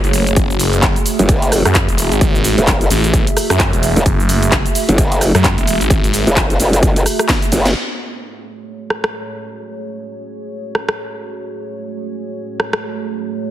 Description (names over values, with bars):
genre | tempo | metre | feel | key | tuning
bass house | 130 BPM | 4/4 | swing 59% on 16ths | F# minor | A4 = 440 Hz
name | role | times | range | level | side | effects
dark analog pad | sustained chords | 0.0-13.5 s | A3 to E5 | -23 LUFS | right 2 dB | chorus, phaser, sidechain pumping
phased detuned saw bass | bass | 0.0-6.2 s | E1 to F#2 | -16 LUFS | equal | phaser, tube saturation, sidechain pumping
garage drum kit | drums | 0.0-12.8 s | cabasa, handclaps, hi-hat, rim click, snare drum | -19 LUFS | equal | studio reverb
electronic kick drum | drums | 0.4-7.4 s | none | -16 LUFS | equal | studio reverb
growl bass | bass | 1.2-7.7 s | E1 to F#1 | -14 LUFS | equal | chorus, overdrive, sidechain pumping
room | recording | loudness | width
digital ambience | heavily compressed radio sound | -12 LUFS | side -12 dB against mid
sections
0.0-7.8 A section; 7.8-13.5 B section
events
drop 0.0-7.8; drum fill 7.3-7.8; band accent 7.6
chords
0.0 F#madd9